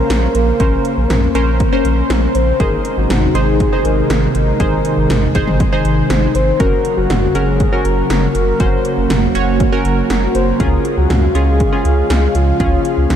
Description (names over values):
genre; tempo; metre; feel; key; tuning
synth-pop; 120 BPM; 4/4; straight; unclear; A4 = 439 Hz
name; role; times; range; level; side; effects
soft octave-layered synth lead; melody; 0.0-13.2 s; F4 to C5; -21 LUFS; left 2 dB; chorus, ping-pong delay, shimmer reverb
funky polysynth comp; accompaniment; 0.0-13.1 s; Db4 to Db5; -20 LUFS; equal; chorus, shimmer reverb
phased analog pad; sustained chords; 0.0-13.2 s; C3 to F5; -19 LUFS; equal; phaser, chorus, shimmer reverb
round analog bass; bass; 0.0-13.2 s; Gb1 to Db2; -16 LUFS; equal; none
80s electronic pad drums; drums; 0.1-13.2 s; hi-hat, kick drum, snare drum, toms; -19 LUFS; equal; gated reverb on snare and toms
room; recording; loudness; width
moderate huge ambient reverb, RT60 9.0 s; dreamy mix soaked in reverb; -12 LUFS; side -9 dB against mid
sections
0.0-13.2 A section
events
none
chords
0.0 Bbmadd9; 2.6 Ab; 6.6 Gb; 10.6 Db